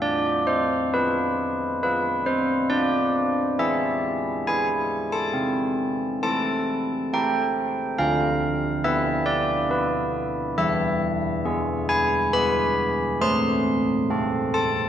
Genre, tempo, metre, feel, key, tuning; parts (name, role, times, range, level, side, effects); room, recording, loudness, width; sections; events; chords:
classical, tune for church bells; 68 BPM; 3/4; straight; A4 = 440 Hz
carillon bells; solo; 0.0-14.9 s; D3 to C6; -21 LUFS; equal
wet scoring stage reverb, RT60 2.0 s; worn, warbling old tape, cassette tape, warbly pitch drift; -21 LUFS; side -10 dB against mid
0.0-14.9 A section
0.0 Bdim/D; 2.7 E7/D; 5.4 Am/C; 8.0 Bdim/D; 10.6 E; 13.2 Am